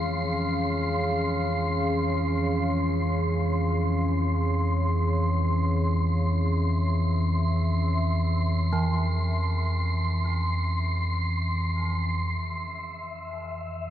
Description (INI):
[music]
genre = dark ambient drone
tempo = free time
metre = none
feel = none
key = unclear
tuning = A4 = 440 Hz
[part]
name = deep dark ambient pad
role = sustained chords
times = 0.0-12.2 s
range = Db4 to F5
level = -31 LUFS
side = equal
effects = chorus, built-in reverb
[part]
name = gamelan-type bronze metallophone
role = arpeggios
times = 0.0-0.2, 8.7-13.9 s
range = E3 to A3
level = -35 LUFS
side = right 3 dB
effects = diffuse ambient delay
[part]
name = deep rumbling drone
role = drone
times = 0.0-13.9 s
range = F2 to E3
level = -25 LUFS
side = equal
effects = built-in reverb
[part]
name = wind-like tuned noise texture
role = texture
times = 0.0-13.9 s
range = E5 to C6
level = -32 LUFS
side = equal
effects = built-in reverb
[sound]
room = wet cathedral reverb, RT60 6.1 s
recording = nothing above 10.8 kHz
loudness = -24 LUFS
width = side -11 dB against mid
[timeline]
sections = 0.0-12.2 A section; 12.2-13.9 B section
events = fade-out on ambient pad 0.0-12.2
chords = 0.0 Db; 12.2 N.C.